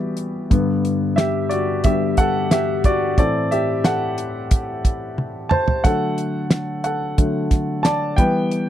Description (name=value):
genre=piano-driven pop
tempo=90 BPM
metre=4/4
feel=straight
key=D mixolydian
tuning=A4 = 440 Hz
part: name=warm grand piano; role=accompaniment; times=0.0-8.7 s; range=G2 to A5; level=-19 LUFS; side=left 1 dB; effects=none
part: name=damped 70s drum kit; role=drums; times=0.2-8.7 s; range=hi-hat, kick drum, snare drum, toms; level=-17 LUFS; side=right 1 dB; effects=none
room=light reverb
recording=dry, close 1970s-style studio recording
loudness=-17 LUFS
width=side -11 dB against mid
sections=0.0-8.7 A section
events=grand piano solo 0.0-8.7; drum fill 5.2-5.8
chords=0.0 Em; 0.5 G; 3.2 Am; 5.8 D; 8.2 Em